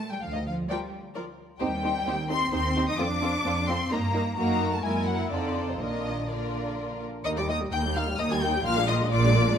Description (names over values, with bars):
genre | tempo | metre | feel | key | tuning
quick classical-period movement for string orchestra | 129 BPM | 3/4 | rubato | Bb major | A4 = 438 Hz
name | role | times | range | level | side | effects
rich studio violin section | melody | 0.0-9.6 s | C5 to Ab6 | -31 LUFS | left 2 dB | none
rich studio cello section | bass | 0.0-9.5 s | Eb2 to Eb4 | -32 LUFS | right 1 dB | none
rich studio double bass section | bass | 0.2-9.5 s | Bb1 to G2 | -30 LUFS | right 2 dB | none
rich studio violin section | second line | 0.7-9.6 s | Eb4 to Ab5 | -32 LUFS | left 5 dB | none
dark studio viola section | accompaniment | 0.7-9.6 s | F3 to G4 | -31 LUFS | equal | none
room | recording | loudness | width
moderate scoring stage reverb, RT60 1.6 s | none | -24 LUFS | side -8 dB against mid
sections
0.0-7.3 A section; 7.3-9.6 B section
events
none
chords
0.2 Bb/D (rootless); 1.6 Cm/Eb; 3.0 F; 3.9 Eb/G; 4.4 Ebm/Gb; 4.8 Gb7; 5.3 F7; 5.8 Bb; 7.3 Eb; 8.7 Bb7